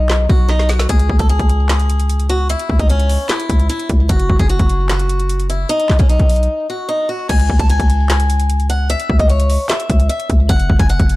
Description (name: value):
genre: hip hop, trap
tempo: 150 BPM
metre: 4/4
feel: half-time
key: C# minor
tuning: A4 = 440 Hz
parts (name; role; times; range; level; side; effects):
- picked swing-style acoustic guitar; melody; 0.0-11.2 s; C#4 to A5; -20 LUFS; left 1 dB; ping-pong delay
- hard-hitting 808-style bass; bass; 0.0-11.2 s; F#1 to C#2; -14 LUFS; equal; none
- trap drum kit; drums; 0.1-11.2 s; crash cymbal, handclaps, hi-hat, kick drum, snare drum; -16 LUFS; equal; none
room: digital ambience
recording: dark, warm production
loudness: -12 LUFS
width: side -18 dB against mid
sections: 0.0-7.3 A section; 7.3-11.2 B section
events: break 0.0-0.9, 6.5-7.3; drum fill 0.5-0.9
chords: 0.0 B; 0.9 C#m; 4.1 N.C.; 5.7 B; 7.3 C#m; 10.5 N.C.